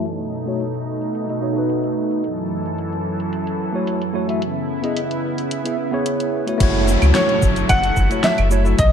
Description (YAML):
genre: sunset chillout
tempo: 110 BPM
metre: 4/4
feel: straight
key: F# dorian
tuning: A4 = 440 Hz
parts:
  - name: tine electric piano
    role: accompaniment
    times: 0.0-8.8 s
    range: A3 to E5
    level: -24 LUFS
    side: moving between left 5 dB and right 2 dB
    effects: auto-pan, ping-pong delay
  - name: lush unison pad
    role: sustained chords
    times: 0.0-8.9 s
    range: F#2 to A4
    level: -23 LUFS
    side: right 1 dB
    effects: chorus
  - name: deep house drum kit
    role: drums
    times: 0.1-8.9 s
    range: claves, crash cymbal, hi-hat, shaker, snare drum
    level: -25 LUFS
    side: equal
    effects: none
  - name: warm sub bass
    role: bass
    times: 6.6-8.9 s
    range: F#1 to C#2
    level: -17 LUFS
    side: equal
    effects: none
  - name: electronic kick drum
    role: drums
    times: 6.6-8.9 s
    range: none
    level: -19 LUFS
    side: equal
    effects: none
  - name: downlifter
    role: sound effects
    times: 6.6-8.9 s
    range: none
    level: -25 LUFS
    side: left 2 dB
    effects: none
  - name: clear grand piano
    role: melody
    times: 7.1-8.9 s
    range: C#5 to F#5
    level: -19 LUFS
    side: equal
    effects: ping-pong delay
room: moderate concert hall reverb, RT60 2.0 s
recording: dark, warm production, low-pass filter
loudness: -18 LUFS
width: side -8 dB against mid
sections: 0.0-6.6 A section; 6.6-8.9 B section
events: filter sweep 0.0-6.6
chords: 0.1 B7; 2.2 F#m7; 4.4 C#m7; 6.6 F#m7